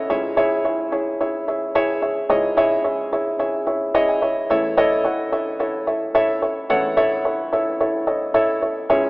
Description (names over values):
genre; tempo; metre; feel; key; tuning
pop; 109 BPM; 4/4; straight; unclear; A4 = 439 Hz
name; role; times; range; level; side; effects
felt-muted upright piano; solo; 0.0-9.1 s; A1 to G#5; -18 LUFS; equal; none
room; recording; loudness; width
moderate lush hall reverb, RT60 2.3 s; rough home demo mix, AM radio sound; -18 LUFS; side -25 dB against mid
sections
0.1-8.9 A section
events
felt piano fill 3.7-4.5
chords
0.1 C#m; 4.5 A